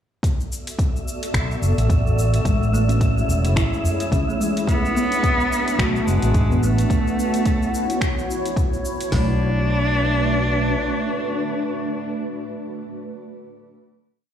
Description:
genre	organic downtempo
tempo	108 BPM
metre	4/4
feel	swing 57% on 16ths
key	B dorian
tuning	A4 = 440 Hz
part	granular cloud pad	sustained chords	0.6-12.1 s	A3 to D5	-27 LUFS	equal	built-in reverb, sidechain pumping, shimmer reverb
part	deep house drum kit	drums	0.2-9.3 s	hi-hat, kick drum, snare drum, toms	-22 LUFS	equal	overdrive
part	deep house drum kit	drums	0.2-9.1 s	finger snaps, hi-hat, shaker	-31 LUFS	left 1 dB	overdrive
part	wind-like tuned noise texture	texture	0.7-6.9 s	E5	-32 LUFS	left 1 dB	built-in reverb, shimmer reverb
part	fretless electric bass	bass	1.3-10.8 s	E1 to C#2	-20 LUFS	equal	sidechain pumping
part	udu	percussion	1.9-6.6 s	none	-24 LUFS	right 1 dB	none
part	kalimba	arpeggios	2.5-9.4 s	G#3 to F#4	-27 LUFS	equal	ping-pong delay, shimmer reverb
part	clear cello	melody	4.7-12.1 s	G#3 to D4	-24 LUFS	equal	ping-pong delay, shimmer reverb
room	light reverb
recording	played on a big sound system in a bare room, large studio reverb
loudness	-18 LUFS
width	side -9 dB against mid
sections	0.2-9.1 groove; 9.1-11.3 final chord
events	none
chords	0.2 Bm7; 2.5 Amaj7; 4.7 Bm7; 6.9 F#m7; 9.1 Bm7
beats	| 0.23 0.79 1.34 1.90 | 2.46 3.01 3.57 4.12 | 4.68 5.23 5.79 6.34 | 6.90 7.46 8.01 8.57 | 9.12 9.68 10.23 10.79

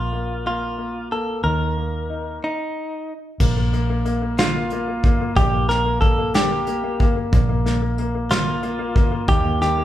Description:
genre	six-eight pop ballad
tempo	61 BPM (dotted quarters)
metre	6/8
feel	straight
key	unclear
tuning	A4 = 443 Hz
part	direct-recorded clean electric guitar	melody	0.0-9.8 s	Eb4 to Bb4	-23 LUFS	equal	none
part	clear concert grand piano	accompaniment	0.0-9.8 s	Eb3 to G4	-26 LUFS	left 2 dB	none
part	vintage muted fingered electric bass	bass	0.0-9.8 s	Bb1 to Eb2	-24 LUFS	right 1 dB	none
part	soft brush drum kit	drums	3.4-9.8 s	crash cymbal, hi-hat, kick drum, snare drum	-20 LUFS	equal	none
room	moderate large studio reverb, RT60 1.1 s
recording	band playing live in one room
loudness	-18 LUFS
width	side -12 dB against mid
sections	0.0-3.4 A section; 3.4-9.8 B section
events	stop 2.4-3.4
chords	0.0 Bb5; 1.4 Eb5; 3.4 Bb5; 5.4 Gm/Bb; 7.3 Bb5; 9.3 Eb5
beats	0.46 | 1.44 2.42 | 3.40 4.38 | 5.37 6.34 | 7.32 8.30 | 9.28

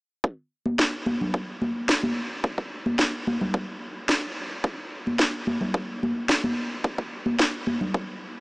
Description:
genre	nu-disco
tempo	109 BPM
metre	4/4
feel	straight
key	none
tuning	none
part	electronic kick drum	drums	0.2-8.1 s	none	-27 LUFS	equal	overdrive, high-pass filter on kick
part	congas	percussion	0.7-7.9 s	none	-28 LUFS	equal	none
part	electronic snare drum	drums	0.8-7.5 s	none	-26 LUFS	equal	overdrive
room	moderate huge ambient reverb, RT60 8.5 s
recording	dreamy mix soaked in reverb, small speaker sound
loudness	-24 LUFS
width	side -30 dB against mid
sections	0.2-8.4 A section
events	none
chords	none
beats	| 0.24 0.79 1.34 1.89 | 2.44 2.99 3.54 4.09 | 4.64 5.19 5.75 6.29 | 6.85 7.40 7.95

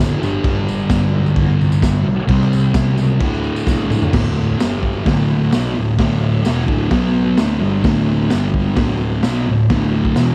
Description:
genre	garage rock duo or trio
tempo	129 BPM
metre	4/4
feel	straight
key	D mixolydian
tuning	A4 = 440 Hz
part	thick fuzz guitar	riff	0.0-10.3 s	D2 to C4	-18 LUFS	equal	distortion, cassette tape
part	fuzz picked electric bass	bass	0.0-10.3 s	D1 to E2	-26 LUFS	equal	overdrive
part	tambourine	percussion	0.0-10.3 s	none	-41 LUFS	equal	none
part	raw garage drum kit	drums	0.4-10.3 s	crash cymbal, hi-hat, kick drum, snare drum, toms	-21 LUFS	equal	cassette tape
room	light reverb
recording	home recording on cassette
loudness	-16 LUFS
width	mono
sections	0.0-4.1 A section; 4.1-10.3 B section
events	drum fill 3.7-4.1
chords	0.2 G; 2.3 C5; 3.2 D5; 4.6 G5; 5.1 D; 6.9 B5; 7.4 D5; 8.3 G5; 8.8 D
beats	| 0.45 0.90 1.36 1.82 | 2.28 2.74 3.21 3.67 | 4.13 4.59 5.06 5.52 | 5.99 6.45 6.92 7.38 | 7.85 8.31 8.78 9.24 | 9.71 10.17

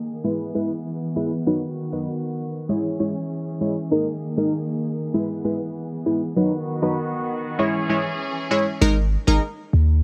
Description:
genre	dancehall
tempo	98 BPM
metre	4/4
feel	straight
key	G# minor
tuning	A4 = 437 Hz
part	rich chamber string section	sustained chords	0.0-8.8 s	D#3 to G#4	-30 LUFS	equal	none
part	punchy chord stab	accompaniment	0.2-9.4 s	F#3 to C#5	-25 LUFS	equal	chorus
part	warm 808-style bass	bass	8.8-10.0 s	G#1 to D#2	-19 LUFS	equal	none
room	light reverb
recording	low-pass filter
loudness	-24 LUFS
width	mono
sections	0.0-8.8 A section; 8.8-10.0 B section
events	filter sweep 0.0-8.8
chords	0.2 E; 1.5 B; 2.7 C#m; 3.9 G#sus2; 5.1 E; 6.4 B; 7.6 C#m; 8.8 G#sus2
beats	0.24 0.86 | 1.47 2.08 2.69 3.31 | 3.92 4.53 5.14 5.75 | 6.37 6.98 7.59 8.20 | 8.81 9.43

